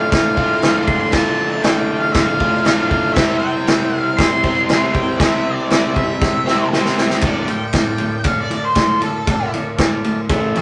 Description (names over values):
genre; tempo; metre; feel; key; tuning
garage rock duo or trio; 118 BPM; 4/4; straight; D minor; A4 = 437 Hz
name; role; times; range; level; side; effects
octave-fuzz lead guitar; melody; 0.0-10.6 s; A4 to C6; -23 LUFS; equal; distortion
combo organ; sustained chords; 0.0-10.6 s; E4 to F5; -30 LUFS; equal; none
overdriven electric guitar; riff; 0.0-10.6 s; D2 to C5; -23 LUFS; equal; none
vintage drum kit; drums; 0.1-10.6 s; crash cymbal, kick drum, ride cymbal, snare drum; -20 LUFS; equal; none
room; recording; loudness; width
light reverb; rough rehearsal-room recording, nothing above 10.4 kHz; -17 LUFS; mono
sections
0.0-7.2 A section; 7.2-10.6 B section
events
drum fill 6.2-7.2; lead electric guitar solo 7.2-10.6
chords
0.0 Dm; 3.2 C; 7.2 Dm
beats
0.12 0.63 | 1.14 1.65 2.15 2.66 | 3.17 3.68 4.18 4.69 | 5.20 5.71 6.22 6.73 | 7.24 7.75 8.26 8.77 | 9.28 9.79 10.30